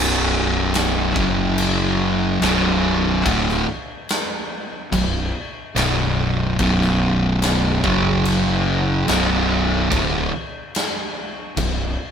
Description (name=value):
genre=stoner and doom metal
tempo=72 BPM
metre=4/4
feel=straight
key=B minor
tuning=A4 = 440 Hz
part: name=fuzz guitar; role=riff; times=0.0-11.9 s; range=B1 to F#3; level=-18 LUFS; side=equal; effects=distortion
part: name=fuzz fingered electric bass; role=bass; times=0.0-12.0 s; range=B0 to F#1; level=-24 LUFS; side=equal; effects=overdrive
part: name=big rock drum kit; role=drums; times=0.1-11.8 s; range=crash cymbal, kick drum, snare drum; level=-24 LUFS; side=equal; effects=none
room=light reverb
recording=band playing live in one room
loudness=-17 LUFS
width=side -8 dB against mid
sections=0.0-12.1 A section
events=none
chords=0.0 B5; 1.2 F#5; 2.4 Bm; 7.8 F#5; 9.1 Bm